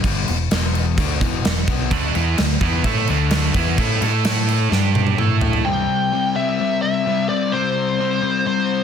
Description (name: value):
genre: hard rock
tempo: 128 BPM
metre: 4/4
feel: straight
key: unclear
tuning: A4 = 441 Hz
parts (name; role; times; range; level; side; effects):
- overdriven semi-hollow guitar; riff; 0.0-8.8 s; E2 to A4; -22 LUFS; left 10 dB; none
- fingered electric bass; bass; 0.0-5.6 s; E1 to A2; -21 LUFS; right 1 dB; none
- gated 80s drum kit; drums; 0.0-5.6 s; crash cymbal, kick drum, snare drum, toms; -21 LUFS; right 1 dB; none
- high-gain distorted guitar; riff; 1.9-5.7 s; D3 to A4; -22 LUFS; right 15 dB; distortion
- bluesy overdriven lead guitar; melody; 5.7-8.8 s; C5 to G5; -20 LUFS; right 2 dB; distortion
room: light reverb, small room ambience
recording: dense, heavily limited modern master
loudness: -16 LUFS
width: side -7 dB against mid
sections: 0.0-5.7 A section; 5.7-8.8 B section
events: drum fill 4.7-5.7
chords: 0.0 Em; 1.9 D5; 4.0 A5; 4.7 G5; 5.2 A5; 5.7 C